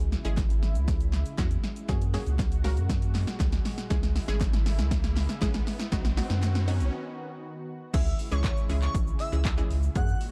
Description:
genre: dance-pop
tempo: 119 BPM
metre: 4/4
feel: straight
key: C# dorian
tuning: A4 = 442 Hz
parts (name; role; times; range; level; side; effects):
- unison pluck; accompaniment; 0.0-10.3 s; E3 to A#4; -40 LUFS; equal; none
- lush unison pad; sustained chords; 0.0-10.3 s; A#2 to F#4; -42 LUFS; equal; chorus, sidechain pumping
- saturated sub bass; bass; 0.0-10.2 s; G#1 to F#2; -29 LUFS; equal; sidechain pumping
- punchy analog drum machine; drums; 0.0-10.3 s; crash cymbal, handclaps, hi-hat, kick drum, shaker, snare drum; -30 LUFS; equal; overdrive
- riser; sound effects; 2.6-6.9 s; none; -47 LUFS; equal; none
- group handclap; percussion; 0.4-9.6 s; none; -52 LUFS; equal; none
- airy dreamy lead; melody; 7.9-10.2 s; C#5 to F#5; -40 LUFS; equal; chorus, sidechain pumping, dub echo
room: digital ambience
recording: dark, warm production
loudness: -27 LUFS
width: mono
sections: 0.0-7.9 A section; 7.9-10.3 B section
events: build-up 0.0-7.9; drum fill 0.0-6.9; riser 2.6-7.9; break 6.9-7.9; drop 7.9-10.3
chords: 0.0 C#m; 1.9 F#add9; 3.9 C#m; 5.9 B; 7.9 C#m

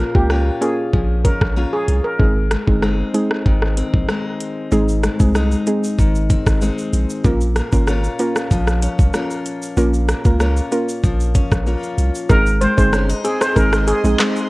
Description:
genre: dancehall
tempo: 95 BPM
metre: 4/4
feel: straight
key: Ab major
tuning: A4 = 442 Hz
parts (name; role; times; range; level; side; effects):
- picked steel-string acoustic guitar; arpeggios; 0.0-14.5 s; Ab2 to F4; -23 LUFS; left 2 dB; none
- punchy sub bass; bass; 0.0-14.2 s; G1 to Db2; -18 LUFS; equal; none
- steel pan; melody; 0.1-2.2, 12.3-14.0 s; G4 to C5; -21 LUFS; equal; tape echo
- soft round pluck; accompaniment; 0.1-14.5 s; Ab3 to Bb4; -21 LUFS; right 1 dB; chorus
- island pop drum kit; drums; 0.1-14.5 s; handclaps, hi-hat, kick drum, rim click, shaker; -19 LUFS; equal; none
- granular cloud pad; sustained chords; 13.0-14.5 s; Ab4 to C6; -28 LUFS; right 2 dB; built-in reverb, sidechain pumping
room: little or no reverb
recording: worn, warbling old tape, cassette tape, warbly pitch drift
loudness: -15 LUFS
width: side -22 dB against mid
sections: 0.0-12.3 A section; 12.3-14.5 B section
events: none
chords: 0.0 Bbm; 2.2 Ab; 7.2 Bbm; 12.3 Ab

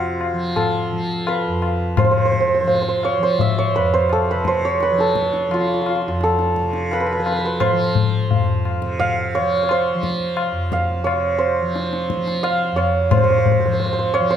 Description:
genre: indian classical, Hindustani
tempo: 86 BPM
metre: 4/4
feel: straight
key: unclear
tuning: A4 = 440 Hz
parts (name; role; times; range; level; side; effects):
- santur; melody; 0.0-14.4 s; F4 to F5; -19 LUFS; right 3 dB; none
- tanpura; drone; 0.0-14.4 s; F2 to F3; -24 LUFS; equal; none
- tabla; percussion; 0.2-14.4 s; none; -22 LUFS; left 7 dB; none
room: moderate recital hall reverb, RT60 1.5 s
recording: none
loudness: -17 LUFS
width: side -9 dB against mid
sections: 0.0-13.1 A section; 13.1-14.4 B section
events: speeding up 0.0-14.4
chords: none

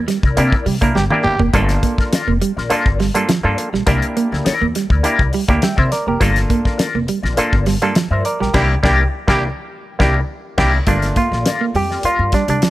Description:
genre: funk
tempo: 103 BPM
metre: 4/4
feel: straight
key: G dorian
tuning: A4 = 440 Hz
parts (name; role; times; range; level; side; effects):
- semi-hollow electric guitar; riff; 0.0-12.7 s; F3 to Bb3; -22 LUFS; right 6 dB; none
- upright bass; bass; 0.0-12.6 s; F1 to C3; -19 LUFS; left 1 dB; none
- electric guitar with an envelope filter; accompaniment; 0.1-12.7 s; E4 to D5; -22 LUFS; left 5 dB; wah
- damped 70s drum kit; drums; 0.1-12.7 s; crash cymbal, hi-hat, kick drum, snare drum, toms; -19 LUFS; left 1 dB; none
- overdriven clav; stabs; 0.4-12.7 s; A3 to G5; -20 LUFS; right 1 dB; auto-wah
- growling trombone; second line; 1.0-1.4, 8.5-10.7 s; G4; -23 LUFS; right 2 dB; none
room: small room ambience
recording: none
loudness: -14 LUFS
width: side -16 dB against mid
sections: 0.0-10.9 A section; 10.9-12.7 B section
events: band accent 0.0-1.5, 8.5-10.9; drum fill 1.0-1.5; clav solo 10.9-12.7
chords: 0.0 C9; 1.5 Gm7; 3.9 C9; 6.2 Gm7; 8.5 C9; 10.9 Gm7

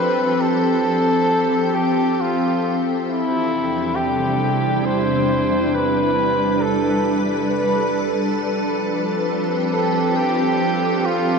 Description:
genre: ambient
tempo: free time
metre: none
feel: none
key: F lydian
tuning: A4 = 440 Hz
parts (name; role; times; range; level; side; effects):
- warm flugelhorn; melody; 0.0-11.4 s; E4 to C5; -21 LUFS; equal; shimmer reverb, ping-pong delay
- soft additive organ-like pad; sustained chords; 0.0-11.4 s; E2 to B4; -19 LUFS; equal; ensemble chorus, built-in reverb, shimmer reverb
room: wet cathedral reverb, RT60 5.8 s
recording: in a vast, echoing space, cassette tape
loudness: -17 LUFS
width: side -5 dB against mid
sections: 0.0-8.4 A section; 8.4-11.4 B section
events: none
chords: 0.0 F; 3.1 Cadd9/E; 5.7 G69; 8.4 F

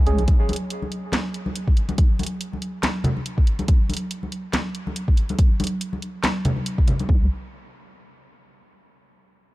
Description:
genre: deep dubstep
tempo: 141 BPM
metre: 4/4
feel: swing 56% on 16ths, half-time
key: unclear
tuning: A4 = 439 Hz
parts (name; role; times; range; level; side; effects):
- deep soft wobble bass; bass; 0.0-0.3, 7.1-7.3 s; C#2; -19 LUFS; equal; chorus
- garage drum kit; drums; 0.1-7.1 s; handclaps, hi-hat, snare drum; -28 LUFS; equal; none
- congas; percussion; 0.2-7.1 s; none; -27 LUFS; equal; dub echo
- deep house drum kit; drums; 0.3-7.2 s; kick drum, toms; -17 LUFS; equal; none
room: little or no reverb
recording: dark, warm production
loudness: -20 LUFS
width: side -18 dB against mid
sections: 0.0-7.1 A section; 7.1-8.8 B section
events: none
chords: none

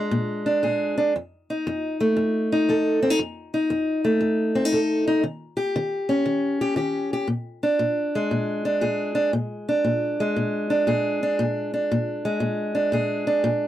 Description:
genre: blues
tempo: 117 BPM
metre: 4/4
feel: swing 66% on 8ths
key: Bb mixolydian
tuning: A4 = 442 Hz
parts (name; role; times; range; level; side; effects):
- fingerpicked steel-string acoustic guitar; solo; 0.0-13.7 s; F2 to A4; -21 LUFS; equal; none
room: little or no reverb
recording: dry, close 1970s-style studio recording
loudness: -21 LUFS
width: side -13 dB against mid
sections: 0.0-9.3 A section; 9.3-13.7 B section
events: none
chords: 0.0 Bb7; 1.1 F7; 5.2 Eb7; 7.3 Bb7

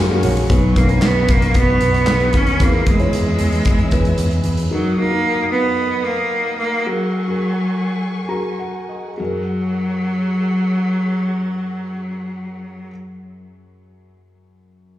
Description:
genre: piano-driven pop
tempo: 97-114 BPM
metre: 4/4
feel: straight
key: F# mixolydian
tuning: A4 = 440 Hz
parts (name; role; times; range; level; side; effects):
- felt-muted upright piano; accompaniment; 0.0-15.0 s; F#2 to A#5; -25 LUFS; left 2 dB; none
- dark studio string section; sustained chords; 0.0-12.9 s; F#3 to E6; -32 LUFS; left 2 dB; none
- direct-recorded clean electric guitar; riff; 0.0-0.5 s; G#3 to F#4; -27 LUFS; right 4 dB; slapback echo
- vintage muted picked electric bass; bass; 0.0-4.7 s; A#1 to F#2; -18 LUFS; equal; none
- huge arena drum kit; drums; 0.2-4.7 s; handclaps, hi-hat, kick drum, ride cymbal, snare drum; -19 LUFS; equal; none
- bright cello; melody; 0.5-12.9 s; F#3 to C#4; -19 LUFS; right 1 dB; slapback echo
room: light reverb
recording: live gig heard through the venue's PA, club reverb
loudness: -15 LUFS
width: side -13 dB against mid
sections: 0.5-9.2 A section; 9.2-14.2 B section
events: slowing down 4.7-9.2; felt piano fill 8.0-9.2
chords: 0.0 F#add9; 0.5 Badd9; 2.6 E; 4.7 D#m/F#; 6.9 F#add9

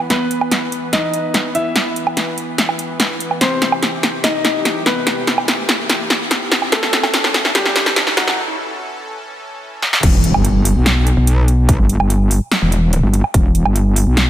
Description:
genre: heavy wobble dubstep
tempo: 145 BPM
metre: 4/4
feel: half-time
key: E harmonic minor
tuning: A4 = 440 Hz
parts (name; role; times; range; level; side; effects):
- supersaw pad; sustained chords; 0.0-10.0 s; C3 to B4; -26 LUFS; equal; sidechain pumping, low-pass filter
- big-room dance drum kit; drums; 0.0-14.3 s; crash cymbal, hi-hat, snare drum, woodblock; -16 LUFS; equal; none
- warm grand piano; melody; 0.1-8.4 s; F#3 to E5; -22 LUFS; left 1 dB; ping-pong delay
- riser and impact; sound effects; 4.4-11.7 s; none; -26 LUFS; equal; none
- metallic wobble bass; bass; 10.0-14.3 s; E1 to B1; -14 LUFS; equal; chorus, overdrive
- electronic kick drum; drums; 10.0-13.4 s; none; -14 LUFS; equal; none
- metallic wobble bass; bass; 11.2-13.0 s; E1 to B1; -12 LUFS; equal; chorus, overdrive
room: light reverb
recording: high-pass filter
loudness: -13 LUFS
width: side -12 dB against mid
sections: 0.0-10.0 A section; 10.0-14.3 B section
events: build-up 0.0-10.0; drum fill 0.0-8.4, 9.8; filter sweep on supersaw synth 0.0-10.0; filter sweep 0.0-10.0; break 8.4-10.0; drop 10.0-14.3; impact 10.0-11.7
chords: 0.0 E5; 3.4 C; 6.7 A; 10.0 Em

